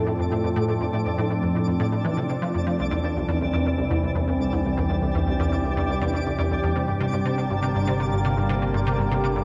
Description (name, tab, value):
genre	ambient, sequencer-driven space music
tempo	121 BPM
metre	4/4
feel	straight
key	unclear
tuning	A4 = 440 Hz
part	evolving wavetable pad	sustained chords	0.0-9.4 s	D3 to A4	-29 LUFS	equal	phaser, built-in reverb
part	resonant blip pluck	riff	0.0-9.4 s	C2 to F3	-27 LUFS	equal	ensemble chorus, delay
part	analog drone	bass	0.1-9.4 s	G1 to F2	-34 LUFS	equal	chorus
part	twinkling granular texture	texture	0.0-9.4 s	D4 to D5	-34 LUFS	equal	built-in reverb
room	moderate plate reverb, RT60 3.0 s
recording	echo-heavy mix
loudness	-24 LUFS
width	mono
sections	0.0-9.4 A section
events	fade-in on synth drone 0.0-9.4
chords	0.0 F; 2.8 C; 6.8 Gm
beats	0.31 | 0.81 1.30 1.80 2.30 | 2.79 3.29 3.78 4.28 | 4.78 5.27 5.77 6.26 | 6.76 7.25 7.75 8.25 | 8.74 9.24